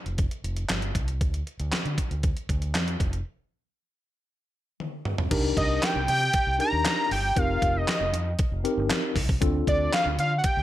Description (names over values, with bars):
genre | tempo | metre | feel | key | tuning
early-eighties boogie funk | 117 BPM | 4/4 | straight | C dorian | A4 = 440 Hz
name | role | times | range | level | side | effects
overdriven fingered electric bass | bass | 0.1-10.6 s | F1 to D3 | -29 LUFS | equal | none
crisp 8-bit digital drum machine | drums | 0.1-10.6 s | crash cymbal, handclaps, hi-hat, kick drum, snare drum, toms | -27 LUFS | equal | gated reverb
mellow tine electric piano | accompaniment | 5.3-10.1 s | C4 to Bb4 | -29 LUFS | left 2 dB | medium stereo tremolo
fat analog lead | melody | 5.6-10.6 s | D5 to Bb5 | -25 LUFS | equal | none
room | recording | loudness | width
digital ambience | none | -23 LUFS | side -13 dB against mid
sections
0.0-5.3 A section; 5.3-10.6 B section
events
break 3.3-5.3; drum fill 4.8-5.3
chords
0.0 F5; 1.2 Dm; 3.3 N.C.; 5.3 Cm7; 7.4 F7sus4; 9.4 Dm7